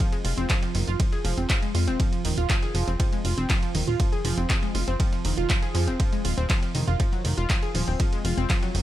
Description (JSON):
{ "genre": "melodic techno", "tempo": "120 BPM", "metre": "4/4", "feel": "straight", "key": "F phrygian", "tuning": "A4 = 440 Hz", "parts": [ { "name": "analog pluck", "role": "arpeggios", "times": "0.0-8.8 s", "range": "Eb3 to Ab4", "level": "-29 LUFS", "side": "right 2 dB", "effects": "chorus, cassette tape, sidechain pumping, digital delay" }, { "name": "dusty soul sampler-style drum kit", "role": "drums", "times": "0.0-8.8 s", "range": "hi-hat, snare drum", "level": "-42 LUFS", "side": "equal", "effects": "none" }, { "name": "electronic kick drum", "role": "drums", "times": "0.0-8.6 s", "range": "none", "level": "-24 LUFS", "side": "equal", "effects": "none" }, { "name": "punchy analog drum machine", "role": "drums", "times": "0.0-8.8 s", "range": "handclaps, hi-hat, ride cymbal", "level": "-31 LUFS", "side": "right 1 dB", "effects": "sidechain pumping on hats, sidechain pumping on cymbals" }, { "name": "plucky analog bass", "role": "bass", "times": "0.2-8.8 s", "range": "Eb1 to F2", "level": "-25 LUFS", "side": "equal", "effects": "sidechain pumping" } ], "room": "little or no reverb", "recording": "none", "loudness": "-22 LUFS", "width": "side -14 dB against mid", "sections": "0.0-8.8 A section", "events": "none", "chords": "0.0 Fm", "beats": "0.00 0.50 | 1.00 1.50 2.00 2.50 | 3.00 3.50 4.00 4.50 | 5.00 5.50 6.00 6.50 | 7.00 7.50 8.00 8.50" }